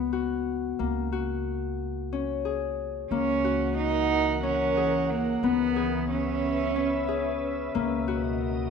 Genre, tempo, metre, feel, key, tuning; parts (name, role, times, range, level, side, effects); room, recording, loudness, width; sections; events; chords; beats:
contemporary instrumental, chamber music in an uneven meter; 181 BPM (eighths); 7/8; straight; C# dorian; A4 = 440 Hz
Celtic harp; arpeggios; 0.0-8.7 s; A#3 to G#4; -28 LUFS; left 10 dB
upright bass; bass; 0.0-8.7 s; C#2; -35 LUFS; right 3 dB
rich cello; melody; 3.1-7.4 s; A#3 to D#4; -27 LUFS; right 6 dB
glassy FM pad; sustained chords; 3.4-8.7 s; B2 to F#5; -32 LUFS; right 3 dB; ensemble chorus, built-in reverb
light reverb; minimal, uncompressed stereo recording; -25 LUFS; side -6 dB against mid
0.0-8.7 A section
0.0 B5/C#; 0.8 C#sus4; 3.1 F#7/C#; 5.4 C#m7; 7.7 Bmaj7/C#
0.13 0.46 | 0.79 1.12 1.46 1.79 2.12 2.45 2.78 | 3.11 3.44 3.77 4.11 4.44 4.77 5.10 | 5.43 5.76 6.09 6.42 6.75 7.08 7.42 | 7.75 8.08 8.41